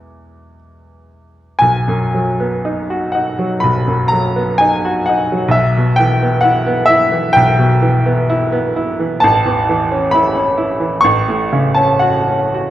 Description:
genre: classical, romantic nocturne for solo piano.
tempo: 54-69 BPM.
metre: 4/4.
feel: rubato.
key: B major.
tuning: A4 = 436 Hz.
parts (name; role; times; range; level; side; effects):
bright baby grand piano; solo; 0.0-12.7 s; A1 to C#6; -12 LUFS; equal; none.
room: wet recital hall reverb, RT60 1.4 s.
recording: worn, warbling old tape, cassette tape, warbly pitch drift.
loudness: -12 LUFS.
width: side -13 dB against mid.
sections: 0.0-1.6 A section; 1.6-12.7 B section.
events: none.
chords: 0.0 E; 1.6 B; 5.5 Em/B; 9.2 A; 11.0 F#m/A.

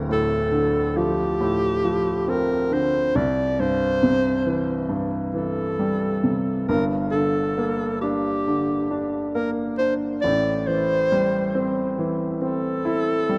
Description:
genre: pop.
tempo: 68 BPM.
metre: 4/4.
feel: straight.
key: D minor.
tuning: A4 = 440 Hz.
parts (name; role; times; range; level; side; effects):
warm baby grand piano; accompaniment; 0.0-13.4 s; D1 to E4; -25 LUFS; equal; none.
mellow clarinet; melody; 0.1-13.4 s; G4 to D5; -26 LUFS; equal; none.
room: moderate lush hall reverb, RT60 2.8 s.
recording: rough home demo mix.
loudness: -23 LUFS.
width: mono.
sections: 0.0-13.4 A section.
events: none.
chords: 0.0 Dm7; 3.2 C; 6.7 Gm; 10.2 Am7.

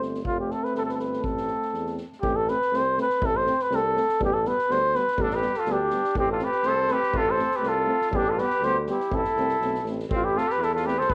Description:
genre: balkan folk, Balkan brass band.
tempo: 122 BPM.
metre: 2/4.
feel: swing 53% on 16ths.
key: A minor.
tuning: A4 = 441 Hz.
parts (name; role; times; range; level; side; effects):
mellow euphonium; accompaniment; 0.0-11.0 s; G3 to A3; -39 LUFS; equal; none.
warm euphonium; accompaniment; 0.0-10.9 s; B3 to C4; -37 LUFS; equal; none.
warm tuba; bass; 0.0-11.1 s; F1 to E2; -33 LUFS; equal; none.
soft-mallet drum kit; percussion; 0.0-11.1 s; kick drum, snare drum; -38 LUFS; equal; none.
breathy flugelhorn; melody; 0.3-11.1 s; F4 to C5; -26 LUFS; equal; none.
breathy trumpet; second line; 5.2-11.1 s; C4 to A4; -34 LUFS; equal; none.
room: moderate plate reverb, RT60 1.1 s, small room reverb.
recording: none.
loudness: -25 LUFS.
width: mono.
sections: 0.0-2.2 A section; 2.2-10.1 B section; 10.1-11.1 A section.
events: none.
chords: 0.3 F; 1.3 Am; 2.2 Amadd9; 4.2 G/A; 6.2 F/A; 8.1 G/A; 9.1 Am.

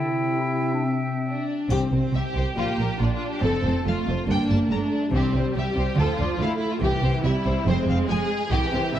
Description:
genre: cinematic, heroic adventure film score.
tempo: 141 BPM.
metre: 4/4.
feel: straight.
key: C mixolydian.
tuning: A4 = 439 Hz.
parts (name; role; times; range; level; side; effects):
bright silver concert flute; second line; 0.0-1.5 s; G5; -31 LUFS; left 1 dB; none.
mellow clarinet; second line; 0.0-1.3 s; C4 to E4; -28 LUFS; right 1 dB; none.
warm oboe; second line; 0.0-1.5 s; E5; -32 LUFS; right 1 dB; none.
dark French horn section; sustained chords; 0.0-1.5 s; C3; -27 LUFS; left 4 dB; none.
rich symphonic violin section; second line; 1.3-9.0 s; C4 to E5; -28 LUFS; left 1 dB; none.
warm symphonic violin section; melody; 1.7-9.0 s; F4 to Bb5; -31 LUFS; left 2 dB; none.
rich symphonic double bass section; bass; 1.7-9.0 s; F1 to D2; -27 LUFS; right 2 dB; none.
warm symphonic cello section; bass; 1.7-9.0 s; F2 to D3; -27 LUFS; right 2 dB; none.
timpani; percussion; 1.7-2.3, 5.1-7.4 s; C3; -30 LUFS; left 3 dB; none.
triangle; percussion; 1.7-2.5 s; none; -47 LUFS; left 2 dB; none.
warm symphonic viola section; accompaniment; 2.6-9.0 s; E3 to D4; -28 LUFS; right 1 dB; none.
room: moderate scoring stage reverb, RT60 1.5 s.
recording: worn, warbling old tape, cassette tape, warbly pitch drift.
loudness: -21 LUFS.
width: side -11 dB against mid.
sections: 0.0-1.7 A section; 1.7-9.0 A section.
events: none.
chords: 0.0 C; 1.7 C5; 2.6 Bb; 3.4 F; 4.3 Gmadd9; 5.1 C5; 6.0 Dm; 6.8 C; 7.7 Fm.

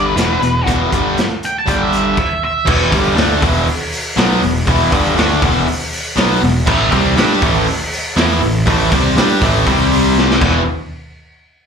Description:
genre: blues rock power trio and southern rock.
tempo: 120 BPM.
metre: 4/4.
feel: straight.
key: unclear.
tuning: A4 = 440 Hz.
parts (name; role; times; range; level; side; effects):
octave-fuzz lead guitar; melody; 0.0-2.7 s; B4 to A5; -18 LUFS; right 1 dB; distortion, slapback echo.
overdriven electric guitar; riff; 0.0-10.6 s; E2 to G4; -15 LUFS; equal; slapback echo.
fuzz picked electric bass; bass; 0.0-10.6 s; E1 to G2; -18 LUFS; equal; overdrive.
raw garage drum kit; drums; 0.2-10.5 s; crash cymbal, hi-hat, kick drum, snare drum; -17 LUFS; equal; none.
room: light reverb.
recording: live gig heard through the venue's PA, club reverb.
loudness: -12 LUFS.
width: side -6 dB against mid.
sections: 0.0-2.7 A section; 2.7-10.7 B section; 10.7-11.7 C section.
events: drum fill 10.2-10.7.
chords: 0.2 E5; 1.7 G5; 2.2 N.C.; 2.7 E5; 6.7 A5; 9.7 C5; 10.4 E5; 10.7 N.C..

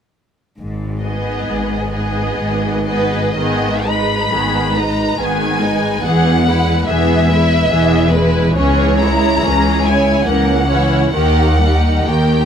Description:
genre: classical, slow romantic movement for string orchestra.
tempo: 59-74 BPM.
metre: 3/4.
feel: rubato.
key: G# minor.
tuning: A4 = 440 Hz.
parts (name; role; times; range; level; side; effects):
rich symphonic cello section; bass; 0.6-12.5 s; C#2 to G#2; -19 LUFS; equal; none.
rich symphonic double bass section; bass; 0.6-12.5 s; E1 to D#2; -19 LUFS; equal; none.
warm symphonic violin section; melody; 1.0-12.5 s; B4 to B5; -20 LUFS; left 2 dB; none.
rich symphonic violin section; second line; 1.0-12.5 s; B3 to C#5; -20 LUFS; equal; none.
rich symphonic viola section; accompaniment; 1.0-12.5 s; D#3 to E4; -20 LUFS; right 2 dB; none.
room: light reverb.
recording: minimal, uncompressed stereo recording.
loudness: -13 LUFS.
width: side -8 dB against mid.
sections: 0.6-3.4 A section; 3.4-12.5 B section.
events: none.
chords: 0.6 G#m; 6.0 E; 8.6 C#m; 10.3 A#dim/C#; 11.1 D#.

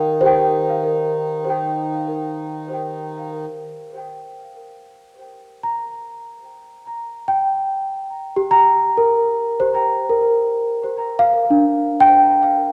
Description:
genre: ambient.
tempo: free time.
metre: none.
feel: none.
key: unclear.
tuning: A4 = 439 Hz.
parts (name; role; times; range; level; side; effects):
worn celesta; arpeggios; 0.0-12.7 s; D4 to Bb5; -19 LUFS; equal; delay.
pedal harmonium; drone; 0.0-3.5 s; Eb3; -31 LUFS; equal; none.
room: wet concert hall reverb, RT60 1.9 s, studio reverb.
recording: none.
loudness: -18 LUFS.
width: mono.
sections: 0.0-3.4 A section; 3.4-12.7 B section.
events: fade-out on harmonium 0.0-3.4; fade-in on celesta 3.4-12.7.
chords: 0.0 Eb; 3.4 Gm; 9.9 Bb.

